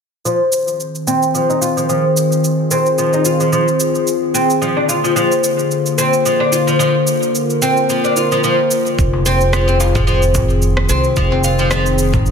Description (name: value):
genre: organic downtempo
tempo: 110 BPM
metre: 4/4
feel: swing 55% on 16ths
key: F dorian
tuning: A4 = 440 Hz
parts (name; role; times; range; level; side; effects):
- warbly tape-like pad; sustained chords; 0.7-12.3 s; D3 to Bb4; -18 LUFS; left 1 dB; chorus, built-in reverb, sidechain pumping
- oud; arpeggios; 0.3-11.9 s; F3 to F4; -16 LUFS; left 1 dB; low-pass filter, tape echo
- electronic shaker and rim click; drums; 0.3-12.3 s; none; -23 LUFS; right 2 dB; overdrive
- upright bass; bass; 9.0-12.3 s; F1 to C2; -16 LUFS; right 1 dB; sidechain pumping
- electronic kick drum; drums; 9.0-12.2 s; none; -19 LUFS; right 1 dB; overdrive
- darbuka; percussion; 9.1-12.2 s; none; -24 LUFS; left 2 dB; none
room: moderate echo chamber reverb, RT60 2.1 s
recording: none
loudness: -13 LUFS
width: side -6 dB against mid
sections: 0.3-12.3 A section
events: filter sweep on oud 0.3-12.3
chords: 0.3 Fm7; 4.6 Bb7; 9.0 Fm7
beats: | 0.26 0.80 1.35 1.90 | 2.44 2.99 3.53 4.08 | 4.62 5.17 5.71 6.26 | 6.80 7.35 7.89 8.44 | 8.99 9.53 10.08 10.62 | 11.17 11.71 12.26